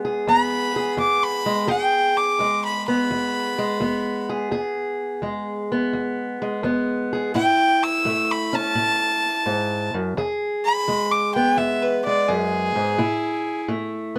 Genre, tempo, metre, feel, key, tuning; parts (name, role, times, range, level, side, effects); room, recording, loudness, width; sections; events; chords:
acoustic country blues, solo or duo; 85 BPM; 4/4; swing 68% on 8ths; E mixolydian; A4 = 440 Hz
fingerpicked steel-string acoustic guitar; accompaniment; 0.0-14.2 s; E2 to G#4; -26 LUFS; equal
rich fiddle; melody; 0.3-13.6 s; G#4 to E6; -23 LUFS; equal
light reverb; close, detailed microphones; -22 LUFS; mono
0.0-1.7 A section; 1.7-14.2 B section
fiddle solo 0.0-1.7
0.0 E; 7.3 A; 10.2 E; 13.0 A5